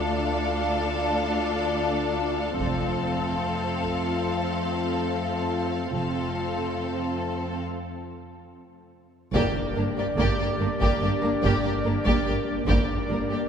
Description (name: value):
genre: cinematic, epic orchestral film score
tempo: 72 BPM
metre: 4/4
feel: straight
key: G minor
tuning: A4 = 441 Hz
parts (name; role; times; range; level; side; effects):
- warm symphonic violin section; melody; 0.0-13.4 s; Bb4 to F5; -34 LUFS; left 2 dB; none
- rich symphonic violin section; second line; 0.0-13.4 s; D4 to A4; -32 LUFS; left 2 dB; none
- dark studio viola section; accompaniment; 0.0-13.4 s; Bb3 to D4; -30 LUFS; right 1 dB; none
- mellow French horn section; sustained chords; 0.0-13.5 s; A3 to F4; -32 LUFS; left 4 dB; none
- dark studio double bass section; bass; 0.0-13.2 s; F1 to G1; -33 LUFS; right 3 dB; none
- rich symphonic cello section; bass; 0.0-13.4 s; D2 to G2; -32 LUFS; right 1 dB; none
- taiko ensemble; drums; 2.6-4.2, 9.3-13.5 s; none; -29 LUFS; right 1 dB; none
- impact; sound effects; 9.3-12.7 s; none; -39 LUFS; equal; none
- warm woodwind section; sustained chords; 9.4-13.5 s; D4 to D5; -30 LUFS; equal; none
room: wet church reverb, RT60 3.4 s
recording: recorded in a church or concert hall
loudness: -23 LUFS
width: side -7 dB against mid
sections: 0.0-9.3 A section; 9.3-13.5 A section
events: break 7.6-9.3; impact 9.3-12.7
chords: 0.0 Dm; 2.6 F; 9.3 Gm